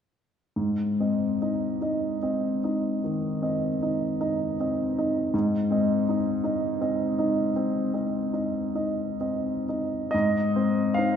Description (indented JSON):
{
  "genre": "classical, romantic nocturne for solo piano",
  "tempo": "41-55 BPM (dotted quarters)",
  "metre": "12/8",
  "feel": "rubato",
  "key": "Ab major",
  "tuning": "A4 = 440 Hz",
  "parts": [
    { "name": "clear baby grand piano", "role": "solo", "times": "0.6-11.2 s", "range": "Ab2 to F5", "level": "-24 LUFS", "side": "equal", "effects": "none" }
  ],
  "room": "wet church reverb, RT60 3.3 s",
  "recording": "recorded in a church or concert hall",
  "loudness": "-24 LUFS",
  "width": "side -8 dB against mid",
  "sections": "0.6-10.1 A section; 10.1-11.2 B section",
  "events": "none",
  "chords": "0.6 Ab"
}